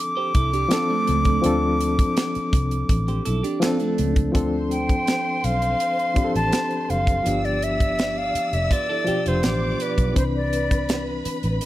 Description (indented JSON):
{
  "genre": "lush 1970s-style soul",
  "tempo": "82 BPM",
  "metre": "4/4",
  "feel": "straight",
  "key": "D dorian",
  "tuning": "A4 = 438 Hz",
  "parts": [
    { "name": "breathy silver concert flute", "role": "melody", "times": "0.0-11.0 s", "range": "B4 to D6", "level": "-25 LUFS", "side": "equal", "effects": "none" },
    { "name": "barky reed electric piano", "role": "accompaniment", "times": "0.0-11.7 s", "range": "B2 to B4", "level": "-26 LUFS", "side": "left 2 dB", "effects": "overdrive, fast tremolo" },
    { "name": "clean electric guitar", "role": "riff", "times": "0.2-4.3, 8.7-10.1 s", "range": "A3 to C5", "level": "-29 LUFS", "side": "right 7 dB", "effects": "phaser" },
    { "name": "tight funk drum kit", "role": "drums", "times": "0.3-11.7 s", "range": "hi-hat, kick drum, snare drum", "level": "-24 LUFS", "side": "equal", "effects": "none" },
    { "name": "vintage muted fingered electric bass", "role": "bass", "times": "0.4-11.6 s", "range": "F1 to D2", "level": "-25 LUFS", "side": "equal", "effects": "none" },
    { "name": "warm studio violin section", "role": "second line", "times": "4.4-11.7 s", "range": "B4 to E6", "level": "-32 LUFS", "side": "equal", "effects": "none" }
  ],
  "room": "small room reverb",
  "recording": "none",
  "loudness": "-19 LUFS",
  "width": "side -15 dB against mid",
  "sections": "0.0-4.3 A section; 4.3-11.7 B section",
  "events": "flute solo 4.3-11.7",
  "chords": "0.0 Dm7; 7.3 G7; 10.2 Cmaj9"
}